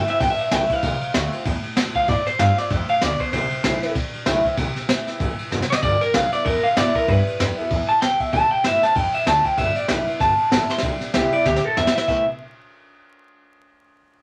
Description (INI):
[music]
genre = rockabilly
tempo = 192 BPM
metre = 4/4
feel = swing 58% on 8ths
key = C major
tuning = A4 = 440 Hz
[part]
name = electric guitar through a small old amp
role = melody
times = 0.0-12.3 s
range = G4 to C6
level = -23 LUFS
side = equal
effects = none
[part]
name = picked acoustic archtop guitar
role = accompaniment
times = 0.0-12.2 s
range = F2 to F4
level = -28 LUFS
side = equal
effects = none
[part]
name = upright bass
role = bass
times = 0.0-12.3 s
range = F1 to B2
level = -28 LUFS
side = equal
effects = none
[part]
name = jazz brush drum kit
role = drums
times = 0.1-12.2 s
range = crash cymbal, kick drum, ride cymbal, snare drum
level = -26 LUFS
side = equal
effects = none
[sound]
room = moderate studio ambience, RT60 0.5 s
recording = vinyl crackle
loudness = -20 LUFS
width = mono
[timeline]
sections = 0.0-10.8 A section; 10.8-12.1 B section; 12.1-13.3 C section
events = drum fill 5.5-5.8, 10.7, 11.5-12.1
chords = 0.0 C6; 0.8 F6; 3.3 C6; 5.8 G6; 8.3 C6; 9.0 F6; 9.6 G6; 12.1 C6